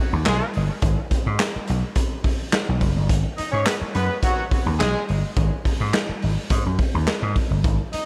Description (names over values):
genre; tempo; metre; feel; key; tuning
funk; 106 BPM; 4/4; straight; unclear; A4 = 440 Hz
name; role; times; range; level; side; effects
vintage slap bass; bass; 0.1-8.0 s; F#1 to G#2; -25 LUFS; equal; none
clear horn section; second line; 0.3-8.0 s; F#3 to D#5; -29 LUFS; equal; tape echo
raw garage drum kit; drums; 0.3-8.1 s; handclaps, hi-hat, kick drum, snare drum; -25 LUFS; equal; none
room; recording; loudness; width
studio reverb; none; -22 LUFS; mono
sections
0.0-8.1 A section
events
none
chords
0.0 G#m